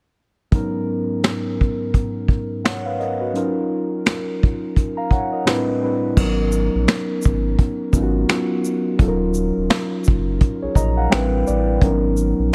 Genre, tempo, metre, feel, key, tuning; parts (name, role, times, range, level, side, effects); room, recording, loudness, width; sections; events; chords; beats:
lo-fi hip hop; 85 BPM; 4/4; swing 59% on 16ths; G# dorian; A4 = 440 Hz
muted felt-like synth keys; accompaniment; 0.5-12.5 s; G#2 to A#5; -23 LUFS; equal; chorus, cassette tape, low-pass filter
vintage brush drum kit; drums; 0.5-12.5 s; crash cymbal, finger snaps, hi-hat, kick drum, shaker, snare drum; -20 LUFS; equal
sub bass with octave; bass; 6.2-12.5 s; D#1 to A#1; -24 LUFS; equal
little or no reverb; -20 LUFS; mono
0.5-6.2 A section; 6.2-12.5 B section
synth keys fill 10.4-11.8
0.5 G#m11; 3.3 D#m9; 5.5 Am11; 6.2 G#m11; 9.0 D#m9; 11.1 Am11; 11.8 G#m11
| 0.52 1.23 1.93 2.64 | 3.34 4.05 4.76 5.46 | 6.17 6.87 7.58 8.29 | 8.99 9.70 10.40 11.11 | 11.81 12.52